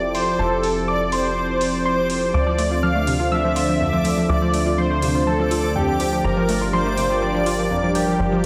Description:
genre	progressive house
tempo	123 BPM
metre	4/4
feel	straight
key	unclear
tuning	A4 = 440 Hz
part	soft supersaw	melody	0.0-8.5 s	G4 to F5	-25 LUFS	equal	tape echo
part	soft round pluck	second line	0.0-8.5 s	G5 to F6	-30 LUFS	equal	chorus, tape echo
part	lush unison pad	sustained chords	0.0-8.5 s	D3 to Bb4	-27 LUFS	equal	chorus, phaser
part	tight sequencer bass	bass	0.0-8.5 s	F1 to D2	-28 LUFS	equal	none
part	backwards swelling texture	texture	0.0-8.5 s	D5 to D6	-35 LUFS	equal	built-in reverb
part	electronic hi-hat	drums	0.1-8.5 s	none	-35 LUFS	equal	overdrive, low-pass filter on hats, small room ambience
part	glassy wavetable pluck	arpeggios	2.3-8.5 s	F2 to F4	-25 LUFS	equal	chorus, tape echo
room	wet lush hall reverb, RT60 1.7 s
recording	dreamy mix soaked in reverb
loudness	-20 LUFS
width	mono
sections	0.0-8.5 A section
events	filter sweep on analog synth pad 0.0-8.5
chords	0.0 Fmaj7; 2.3 Dm7; 6.2 Gm7

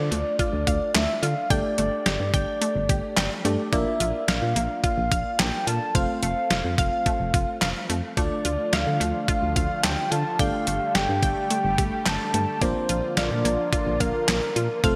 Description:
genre	synth-pop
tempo	108 BPM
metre	4/4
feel	straight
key	unclear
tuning	A4 = 440 Hz
part	soft octave-layered synth lead	melody	0.0-15.0 s	A4 to A5	-29 LUFS	equal	chorus, delay
part	FM electric piano	accompaniment	0.0-15.0 s	A3 to D5	-34 LUFS	equal	chorus
part	solid FM bass	bass	0.0-15.0 s	F1 to D3	-30 LUFS	equal	none
part	resonant blip pluck	arpeggios	0.1-15.0 s	A3 to G5	-34 LUFS	equal	chorus, phaser, delay
part	detuned 8-bit digital drum machine	drums	0.1-15.0 s	handclaps, hi-hat, kick drum, snare drum	-28 LUFS	equal	gated reverb
part	sweeping resonant pad	sustained chords	8.4-15.0 s	C3 to G4	-35 LUFS	equal	chorus
room	moderate lush hall reverb, RT60 2.6 s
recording	bright 1980s-style digital production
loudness	-24 LUFS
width	mono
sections	0.0-15.0 A section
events	none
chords	0.0 Dm; 1.5 Gsus2; 3.7 Bb; 5.9 F; 8.2 Dm; 10.4 Gsus2; 12.6 Bb

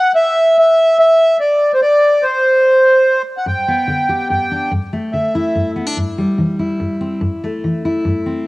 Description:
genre	folk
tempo	144 BPM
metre	3/4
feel	straight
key	G major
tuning	A4 = 440 Hz
part	accordion	melody	0.0-5.7 s	C5 to G5	-11 LUFS	equal	cassette tape
part	fingerpicked steel-string acoustic guitar	accompaniment	3.5-8.5 s	G2 to G4	-18 LUFS	left 1 dB	none
room	light reverb, small room ambience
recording	home recording on cassette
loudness	-12 LUFS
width	side -21 dB against mid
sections	0.0-3.5 A section; 3.5-8.5 B section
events	none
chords	0.0 N.C.; 3.5 G; 4.7 Dsus2/G; 6.0 C/G; 7.2 Am/G

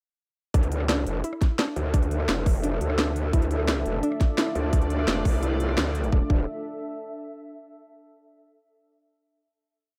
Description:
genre	dark technical drum and bass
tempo	172 BPM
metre	4/4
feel	straight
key	D minor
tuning	A4 = 441 Hz
part	warbly dusty pluck	arpeggios	0.5-6.5 s	D4 to E4	-35 LUFS	equal	chorus, cassette tape, sidechain pumping, digital delay
part	growl bass	bass	0.5-6.5 s	D1 to D2	-29 LUFS	equal	chorus, overdrive
part	drum and bass drum kit	drums	0.5-6.1 s	hi-hat, rim click, snare drum	-30 LUFS	equal	none
part	electronic kick drum	drums	0.5-6.4 s	none	-24 LUFS	equal	none
part	warbly tape-like pad	texture	1.7-7.5 s	D4 to E5	-37 LUFS	equal	chorus, built-in reverb, sidechain pumping
part	sweeping resonant pad	sustained chords	3.3-6.3 s	A3 to D5	-37 LUFS	equal	chorus, sidechain pumping
room	light reverb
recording	none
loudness	-25 LUFS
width	mono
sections	0.5-6.1 drop; 6.1-7.5 final chord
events	drop 0.5-6.1; band accent 5.8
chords	0.5 Dm

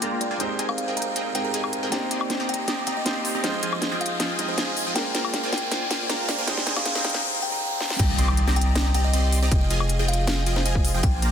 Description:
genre	future bass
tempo	158 BPM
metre	4/4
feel	half-time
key	C minor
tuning	A4 = 440 Hz
part	dark concert grand piano	accompaniment	0.0-8.0 s	Ab3 to F5	-32 LUFS	right 4 dB	sidechain pumping, tape echo
part	supersaw stab	riff	0.0-11.3 s	F3 to C6	-28 LUFS	equal	phaser, sidechain pumping
part	trap drum kit	drums	0.0-11.3 s	crash cymbal, hi-hat, snare drum, woodblock	-28 LUFS	left 1 dB	none
part	riser and impact	sound effects	0.0-9.5 s	none	-30 LUFS	equal	none
part	buzzing kalimba	melody	0.2-11.2 s	C5 to Bb5	-30 LUFS	left 2 dB	sidechain pumping, low-pass filter, digital delay
part	long sustained 808-style bass	bass	8.0-11.3 s	F1 to C2	-22 LUFS	equal	sidechain pumping
part	electronic kick drum	drums	8.0-11.1 s	none	-22 LUFS	equal	none
room	light reverb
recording	dense, heavily limited modern master, high-pass filter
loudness	-21 LUFS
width	side -8 dB against mid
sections	0.0-8.0 A section; 8.0-11.3 B section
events	build-up 0.0-8.0; riser 0.0-8.0; filter sweep 0.0-8.0; drum fill 1.9-7.2, 7.8; drop 8.0-11.3; impact 8.0-9.5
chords	0.4 Abmaj7; 1.9 Cm7; 3.4 Fm7; 5.0 Bb7; 6.5 Abmaj7; 8.0 Cm7; 9.5 Fm7

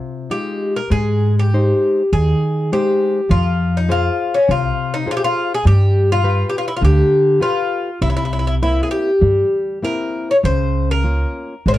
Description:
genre	fado-style ballad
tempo	100 BPM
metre	4/4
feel	rubato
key	F minor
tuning	A4 = 440 Hz
part	Irish bouzouki	melody	0.0-11.8 s	Db4 to Db5	-18 LUFS	left 1 dB	none
part	nylon-string guitar	accompaniment	0.0-11.8 s	C3 to C5	-22 LUFS	left 2 dB	none
part	upright bass	bass	0.9-11.8 s	Ab1 to Ab2	-16 LUFS	right 1 dB	none
room	light reverb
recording	dark, warm production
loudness	-14 LUFS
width	side -14 dB against mid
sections	0.0-11.8 A section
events	none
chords	0.0 Fm7; 0.9 Ab; 3.3 Fm; 5.7 G7; 8.0 C7; 10.4 Db6

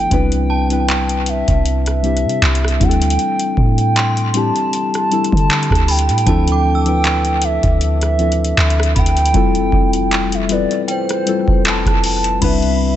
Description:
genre	contemporary R&B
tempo	78 BPM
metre	4/4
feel	swing 54% on 16ths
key	C major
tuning	A4 = 440 Hz
part	gliding portamento lead	melody	0.0-13.0 s	C5 to A5	-20 LUFS	right 2 dB	chorus, tape echo
part	muted felt-like synth keys	accompaniment	0.0-13.0 s	F3 to B4	-19 LUFS	left 4 dB	chorus
part	soft 808-style bass	bass	0.0-13.0 s	F1 to D3	-17 LUFS	right 1 dB	none
part	booming analog drum machine	drums	0.1-12.8 s	crash cymbal, handclaps, hi-hat, kick drum, rim click	-18 LUFS	equal	tape echo
part	synth chime	texture	0.5-13.0 s	G5 to E6	-29 LUFS	equal	ensemble chorus, tape echo
room	light reverb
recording	echo-heavy mix, nothing above 8.0 kHz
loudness	-13 LUFS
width	side -12 dB against mid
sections	0.1-12.4 A section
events	none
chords	0.1 Cmaj7; 2.8 D9sus4; 6.3 Dm9; 9.3 Fmaj7; 12.4 Cmaj7

